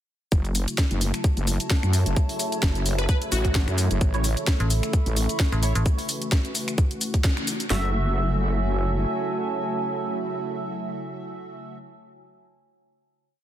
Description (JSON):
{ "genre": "bass house", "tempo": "130 BPM", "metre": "4/4", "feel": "swing 56% on 16ths", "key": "F# minor", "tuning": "A4 = 440 Hz", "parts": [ { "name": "sweeping resonant pad", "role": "sustained chords", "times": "0.3-11.8 s", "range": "C#3 to F#4", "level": "-33 LUFS", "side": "left 2 dB", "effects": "lush chorus, sidechain pumping" }, { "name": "wobble bass", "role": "bass", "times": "0.3-9.0 s", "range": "F#1 to F#2", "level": "-24 LUFS", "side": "equal", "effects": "chorus, overdrive, sidechain pumping" }, { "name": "garage drum kit", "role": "drums", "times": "0.3-7.8 s", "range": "hi-hat, kick drum, snare drum", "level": "-21 LUFS", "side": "equal", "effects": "overdrive, small room reverb" }, { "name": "garage drum kit", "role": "drums", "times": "0.3-7.7 s", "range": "finger snaps, hi-hat, shaker, snare drum", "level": "-29 LUFS", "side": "left 1 dB", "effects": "overdrive, small room reverb" }, { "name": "warbly tape-like pad", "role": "texture", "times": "0.7-12.0 s", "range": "F#4 to C#6", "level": "-32 LUFS", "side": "right 3 dB", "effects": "chorus, built-in reverb, sidechain pumping" }, { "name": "plucky unison lead", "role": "melody", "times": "3.0-3.7 s", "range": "F#4 to B4", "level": "-32 LUFS", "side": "equal", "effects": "phaser, analog chorus, tape echo" }, { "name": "percussive organ stab", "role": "stabs", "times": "4.1-11.8 s", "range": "A3 to E5", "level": "-32 LUFS", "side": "right 3 dB", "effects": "ensemble chorus, sidechain pumping, tape echo" }, { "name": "metallic FM bass", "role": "bass", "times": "4.6-5.8 s", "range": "A1", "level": "-22 LUFS", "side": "equal", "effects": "overdrive, sidechain pumping" } ], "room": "light reverb, digital ambience", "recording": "dense, heavily limited modern master", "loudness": "-22 LUFS", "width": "side -11 dB against mid", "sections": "0.3-7.7 drop; 7.7-11.4 final chord", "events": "drop 0.3-7.7; band accent 7.2", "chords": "0.3 F#m7; 4.0 A; 7.7 F#m7" }